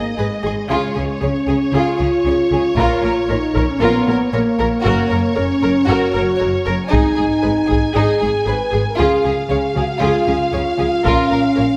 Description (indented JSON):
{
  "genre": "cinematic, epic orchestral film score",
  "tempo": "116 BPM",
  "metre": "4/4",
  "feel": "straight",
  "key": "unclear",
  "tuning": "A4 = 439 Hz",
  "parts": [
    { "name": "warm symphonic violin section", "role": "melody", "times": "0.0-11.8 s", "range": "C#5 to G#5", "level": "-28 LUFS", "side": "equal", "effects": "none" },
    { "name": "mellow French horn section", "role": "sustained chords", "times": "0.0-11.8 s", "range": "G#3 to B4", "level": "-20 LUFS", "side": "equal", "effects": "none" },
    { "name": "rich chamber violin section", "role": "second line", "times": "0.2-11.6 s", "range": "D#4 to C#5", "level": "-26 LUFS", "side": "equal", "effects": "none" },
    { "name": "rich symphonic viola section", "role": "accompaniment", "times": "0.2-11.6 s", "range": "G#4 to A#4", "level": "-25 LUFS", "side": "equal", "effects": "none" },
    { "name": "rich symphonic cello section", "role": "bass", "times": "0.2-11.6 s", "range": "F#2 to C#3", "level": "-27 LUFS", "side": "equal", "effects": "none" },
    { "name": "rich symphonic double bass section", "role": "bass", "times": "0.2-11.6 s", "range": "F#1 to C#2", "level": "-26 LUFS", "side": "equal", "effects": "none" },
    { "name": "taiko ensemble", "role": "drums", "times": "2.8-3.8, 6.9-7.9, 11.1-11.8 s", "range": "none", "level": "-25 LUFS", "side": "equal", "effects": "none" }
  ],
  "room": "wet scoring stage reverb, RT60 1.6 s",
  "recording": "none",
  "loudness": "-17 LUFS",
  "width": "mono",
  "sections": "0.0-11.8 A section",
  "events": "none",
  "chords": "0.0 G#5; 0.7 C#; 2.8 A#m; 4.9 F#; 6.9 G#m; 9.0 C#; 11.1 A#m",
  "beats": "0.18 | 0.70 1.22 1.74 2.26 | 2.78 3.30 3.81 4.33 | 4.85 5.37 5.89 6.40 | 6.92 7.44 7.96 8.47 | 8.99 9.51 10.03 10.54 | 11.06 11.58"
}